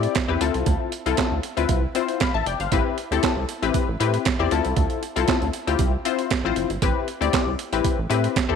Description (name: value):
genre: early-eighties boogie funk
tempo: 117 BPM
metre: 4/4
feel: straight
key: D dorian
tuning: A4 = 440 Hz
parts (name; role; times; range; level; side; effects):
- funky polysynth comp; accompaniment; 0.0-8.6 s; C4 to B5; -23 LUFS; left 11 dB; chorus
- rubbery square bass; bass; 0.0-8.6 s; F1 to A2; -25 LUFS; right 2 dB; none
- breakbeat sampler-style drum kit; drums; 0.0-8.5 s; handclaps, hi-hat, kick drum, snare drum; -24 LUFS; right 4 dB; none
room: light reverb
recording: 1960s-style stereo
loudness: -20 LUFS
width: side -6 dB against mid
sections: 0.0-8.6 A section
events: none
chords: 0.4 Dm7; 2.7 Am7; 4.5 Dm7; 6.8 Am7